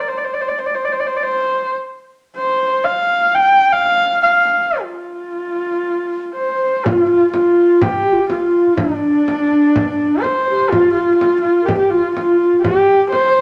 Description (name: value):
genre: mongolian traditional, Mongolian folk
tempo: 124 BPM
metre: 4/4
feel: straight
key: unclear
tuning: A4 = 440 Hz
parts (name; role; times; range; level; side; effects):
- dark horsehead fiddle; melody; 0.0-13.4 s; D4 to G5; -18 LUFS; equal; none
- mellow hollow xiao; second line; 6.4-13.4 s; D4 to C5; -18 LUFS; equal; none
- frame drum; percussion; 6.9-13.4 s; none; -26 LUFS; equal; none
room: wet studio reverb, RT60 1.0 s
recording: none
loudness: -15 LUFS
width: mono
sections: 0.0-6.9 A section; 6.9-13.4 B section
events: none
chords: none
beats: 0.06 0.54 | 1.03 1.51 2.00 2.48 | 2.97 3.46 3.94 4.43 | 4.91 5.40 5.88 6.37 | 6.86 7.34 7.82 8.31 | 8.79 9.28 9.76 10.24 | 10.72 11.20 11.69 12.17 | 12.65 13.13